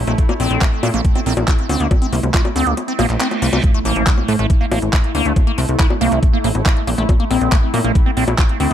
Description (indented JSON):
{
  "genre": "psychedelic trance",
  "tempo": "139 BPM",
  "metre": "4/4",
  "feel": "straight",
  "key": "A phrygian",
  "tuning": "A4 = 435 Hz",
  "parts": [
    { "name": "pulsing gated texture", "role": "sustained chords", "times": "0.0-8.7 s", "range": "A3 to E4", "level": "-25 LUFS", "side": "equal", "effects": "chorus, built-in reverb, sidechain pumping" },
    { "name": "plucky analog bass", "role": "bass", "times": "0.0-8.7 s", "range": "A1 to Bb2", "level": "-18 LUFS", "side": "equal", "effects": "none" },
    { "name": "liquid acid bass", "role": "riff", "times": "0.1-8.7 s", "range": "G3 to F4", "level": "-21 LUFS", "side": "moving between left 8 dB and right 5 dB", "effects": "phaser, auto-pan, sidechain pumping, digital delay" },
    { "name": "garage drum kit", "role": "drums", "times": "0.1-8.7 s", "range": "bongos, handclaps, hi-hat", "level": "-23 LUFS", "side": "left 2 dB", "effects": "none" },
    { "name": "electronic kick drum", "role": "drums", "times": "0.2-8.5 s", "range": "none", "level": "-15 LUFS", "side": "equal", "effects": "none" },
    { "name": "reverse cymbal and impact", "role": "sound effects", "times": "3.1-5.4 s", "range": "none", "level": "-28 LUFS", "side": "right 1 dB", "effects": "none" }
  ],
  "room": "digital ambience",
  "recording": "none",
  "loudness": "-14 LUFS",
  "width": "side -10 dB against mid",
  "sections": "0.0-3.6 A section; 3.6-8.7 B section",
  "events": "kick drops out 2.8-3.6; reverse cymbal 3.1-3.6; drop 3.6-8.7; impact 3.6-5.4",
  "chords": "0.2 Bb5; 3.6 A5; 7.1 Bb5"
}